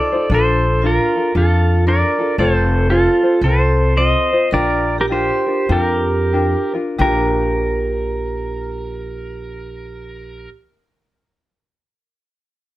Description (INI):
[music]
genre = Hawaiian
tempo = 87-116 BPM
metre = 4/4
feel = swing 63% on 8ths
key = Bb major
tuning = A4 = 440 Hz
[part]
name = pedal steel guitar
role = melody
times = 0.0-10.5 s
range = F4 to Eb5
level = -19 LUFS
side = right 1 dB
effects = none
[part]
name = vibraphone with medium hard mallets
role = second line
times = 0.0-10.5 s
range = F4 to C5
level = -23 LUFS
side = right 3 dB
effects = none
[part]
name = tenor ukulele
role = accompaniment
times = 0.0-10.5 s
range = C4 to C5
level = -22 LUFS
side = left 4 dB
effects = none
[part]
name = upright bass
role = bass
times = 0.3-10.5 s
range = F1 to F2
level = -19 LUFS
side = equal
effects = none
[sound]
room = light reverb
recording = none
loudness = -14 LUFS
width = side -16 dB against mid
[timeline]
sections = 0.0-7.0 A section; 7.0-12.5 B section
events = slowing down 2.4-7.0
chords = 0.3 Bbmaj7; 2.4 F; 4.5 Bb6